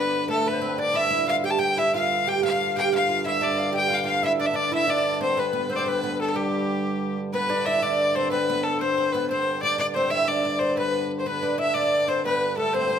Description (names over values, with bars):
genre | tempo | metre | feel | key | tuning
medieval | 122 BPM (dotted quarters) | 6/8 | straight | G mixolydian | A4 = 442 Hz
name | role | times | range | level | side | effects
bright fiddle | melody | 0.0-13.0 s | G4 to A5 | -24 LUFS | left 2 dB | none
breathy bright tenor recorder | second line | 0.0-13.0 s | G4 to G5 | -29 LUFS | left 5 dB | none
oud | second line | 0.0-13.0 s | G3 to G4 | -27 LUFS | right 6 dB | none
pedal harmonium | drone | 0.0-13.0 s | G2 to D3 | -30 LUFS | equal | none
room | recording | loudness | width
moderate recital hall reverb, RT60 1.3 s | close, detailed microphones | -21 LUFS | side -8 dB against mid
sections
0.0-7.3 A section; 7.3-13.0 B section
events
none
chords
none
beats
| 0.45 0.95 | 1.44 1.93 | 2.42 2.92 | 3.41 3.90 | 4.39 4.89 | 5.38 5.87 | 6.36 6.85 | 7.34 7.83 | 8.32 8.81 | 9.30 9.79 | 10.28 10.77 | 11.26 11.75 | 12.23 12.72